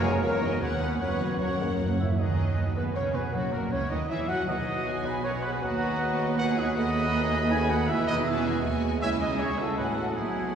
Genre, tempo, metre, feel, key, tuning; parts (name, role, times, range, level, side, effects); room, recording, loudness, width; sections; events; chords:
quick classical-period movement for symphony orchestra; 157 BPM; 3/4; straight; B major, E major from 6.8 s; A4 = 439 Hz
rich studio violin section; melody; 0.0-10.6 s; F#4 to B5; -39 LUFS; left 3 dB
clear clarinet; second line; 0.0-10.5 s; D#4 to F#5; -39 LUFS; left 1 dB
rich studio violin section; second line; 0.0-10.6 s; D#4 to D#5; -40 LUFS; left 3 dB
silver concert flute; second line; 0.0-10.6 s; C#4 to E5; -39 LUFS; left 1 dB
warm oboe; second line; 0.0-10.6 s; F#4 to G#5; -36 LUFS; right 1 dB
dark bassoon; accompaniment; 0.0-10.6 s; F#3 to F#4; -35 LUFS; right 2 dB
rich studio viola section; accompaniment; 0.0-10.6 s; F#3 to C#5; -38 LUFS; right 2 dB
mellow French horn section; sustained chords; 0.0-10.6 s; F#3 to G#4; -35 LUFS; left 1 dB
rich studio cello section; bass; 0.0-10.6 s; C#2 to F#3; -31 LUFS; right 2 dB
warm studio double bass section; bass; 0.0-10.6 s; E1 to F#2; -34 LUFS; right 1 dB
timpani; percussion; 0.0-5.0, 10.2-10.6 s; F#2 to B2; -32 LUFS; right 2 dB
mellow trumpet; stabs; 2.0-10.6 s; F#4 to G#5; -32 LUFS; right 1 dB
wet cathedral reverb, RT60 4.3 s; recorded in a church or concert hall, small room ambience; -25 LUFS; side -8 dB against mid
0.0-2.2 A section; 2.2-10.6 B section
timpani fill 1.0-2.2
0.0 F#; 0.6 B/D#; 1.0 F#; 2.2 B/D#; 3.3 F#7; 4.5 B; 5.6 B/D#; 6.8 B7/D#; 7.9 E; 9.0 C#m; 9.8 F#m7/A